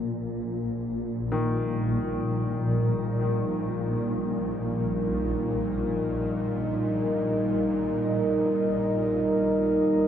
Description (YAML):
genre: dark ambient drone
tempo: free time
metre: none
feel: none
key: unclear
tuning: A4 = 440 Hz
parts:
  - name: swarming drone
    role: drone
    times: 0.0-10.1 s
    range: Bb1 to Bb2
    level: -28 LUFS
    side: equal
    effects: built-in reverb
  - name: bronze singing bowl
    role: texture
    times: 0.0-10.1 s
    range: Bb4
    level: -52 LUFS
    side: left 5 dB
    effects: none
  - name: dark analog pad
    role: sustained chords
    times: 1.3-10.1 s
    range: G3 to Eb5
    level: -26 LUFS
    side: right 1 dB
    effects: chorus
  - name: bright grand piano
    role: arpeggios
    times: 1.3-10.1 s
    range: Eb3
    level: -36 LUFS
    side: left 3 dB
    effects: diffuse ambient delay, shimmer reverb
room: wet huge ambient reverb, RT60 8.6 s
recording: dreamy mix soaked in reverb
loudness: -24 LUFS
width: side -9 dB against mid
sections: 0.0-10.1 A section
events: none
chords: 0.0 Eb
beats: free time